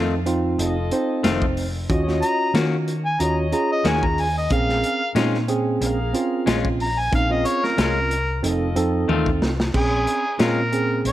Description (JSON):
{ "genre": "straight-eighth soul blues", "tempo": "92 BPM", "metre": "4/4", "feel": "swing 53% on 16ths", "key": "Bb minor", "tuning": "A4 = 439 Hz", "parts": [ { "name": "tine electric piano", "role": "accompaniment", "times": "0.0-11.1 s", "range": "C4 to C5", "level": "-24 LUFS", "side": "right 4 dB", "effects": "none" }, { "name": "semi-hollow electric guitar", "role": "stabs", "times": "0.0-10.6 s", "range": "Eb3 to Gb4", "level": "-27 LUFS", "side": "left 6 dB", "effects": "none" }, { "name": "hollow-body short-scale fingered electric bass", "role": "bass", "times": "0.0-11.1 s", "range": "F1 to Eb3", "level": "-25 LUFS", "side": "equal", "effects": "none" }, { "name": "crunchy breakbeat drum kit", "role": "drums", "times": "0.3-11.1 s", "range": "crash cymbal, hi-hat, kick drum, snare drum, toms", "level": "-25 LUFS", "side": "equal", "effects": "none" }, { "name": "clear horn section", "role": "sustained chords", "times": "0.6-9.1 s", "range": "F4 to F5", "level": "-32 LUFS", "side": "left 3 dB", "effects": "none" }, { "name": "mellow harmonica", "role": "melody", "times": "2.2-11.1 s", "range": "Ab4 to Bb5", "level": "-23 LUFS", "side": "left 1 dB", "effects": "none" } ], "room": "light reverb, small room ambience", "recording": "none", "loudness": "-19 LUFS", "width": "side -13 dB against mid", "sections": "0.0-9.7 A section; 9.7-11.1 B section", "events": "harmonica solo 0.0-9.7; drum fill 9.1-9.7", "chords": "0.0 F7; 1.9 Ebm7; 4.5 Bbm7; 8.4 F7; 9.7 Bbm7" }